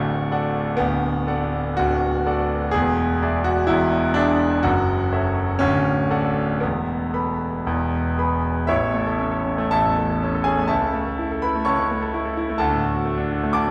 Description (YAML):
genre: classical, virtuoso piano study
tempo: 110-131 BPM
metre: 4/4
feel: rubato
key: A major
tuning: A4 = 440 Hz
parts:
  - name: clear concert grand piano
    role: solo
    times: 0.0-13.7 s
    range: D1 to D6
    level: -22 LUFS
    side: equal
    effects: none
room: wet recital hall reverb, RT60 1.6 s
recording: heard from further back in the room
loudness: -22 LUFS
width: mono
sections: 0.0-8.7 A section; 8.7-13.7 B section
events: none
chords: 0.0 D; 2.7 E7; 4.6 F#m7; 5.6 D; 6.6 Esus4; 7.7 E; 8.7 A; 10.7 A/C#; 12.6 D